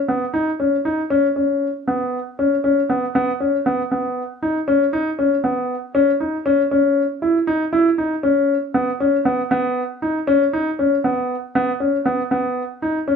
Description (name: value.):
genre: progressive instrumental, progressive.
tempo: 236 BPM (eighths).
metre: 11/8.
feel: straight.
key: B major.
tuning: A4 = 443 Hz.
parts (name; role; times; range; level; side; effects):
dark concert grand piano; solo; 0.1-13.2 s; B3 to E4; -17 LUFS; left 1 dB; none.
room: wet studio reverb, RT60 0.6 s.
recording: heard from further back in the room, lossy compression artefacts.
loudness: -17 LUFS.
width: side -6 dB against mid.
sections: 0.0-3.1 A section; 3.1-13.2 B section.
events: none.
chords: none.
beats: 0.08 | 0.34 0.59 0.85 1.10 1.36 1.61 1.87 2.12 2.38 2.63 2.89 | 3.14 3.40 3.65 3.91 4.16 4.42 4.67 4.93 5.18 5.43 5.69 | 5.94 6.20 6.45 6.71 6.96 7.22 7.47 7.72 7.98 8.23 8.49 | 8.74 9.00 9.25 9.51 9.76 10.02 10.27 10.53 10.78 11.03 11.29 | 11.54 11.80 12.05 12.31 12.56 12.82 13.07.